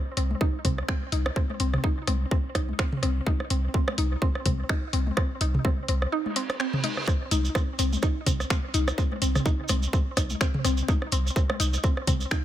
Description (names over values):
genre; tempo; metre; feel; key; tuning
minimal techno; 126 BPM; 4/4; swing 57% on 16ths; C minor; A4 = 440 Hz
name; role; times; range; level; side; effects
mallet-like synth pluck; riff; 0.2-12.4 s; C4 to Eb4; -32 LUFS; left 1 dB; chorus, phaser, cassette tape, sidechain pumping, analog delay
punchy sub bass; bass; 0.2-12.3 s; C2; -26 LUFS; equal; sidechain pumping
garage drum kit; drums; 0.2-12.4 s; finger snaps, hi-hat; -32 LUFS; left 1 dB; small room ambience, tape echo
minimal click drum kit; percussion; 0.3-12.4 s; rim click, toms; -32 LUFS; equal; small room ambience, dub echo
electronic kick drum; drums; 0.4-12.4 s; none; -26 LUFS; equal; small room ambience
reverse cymbal; sound effects; 6.3-7.1 s; none; -37 LUFS; right 4 dB; none
maracas; percussion; 7.1-12.4 s; none; -34 LUFS; right 5 dB; tape echo
room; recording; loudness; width
little or no reverb; echo-heavy mix; -24 LUFS; side -12 dB against mid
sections
0.0-12.4 A section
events
reverse cymbal 6.3-7.1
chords
0.0 C5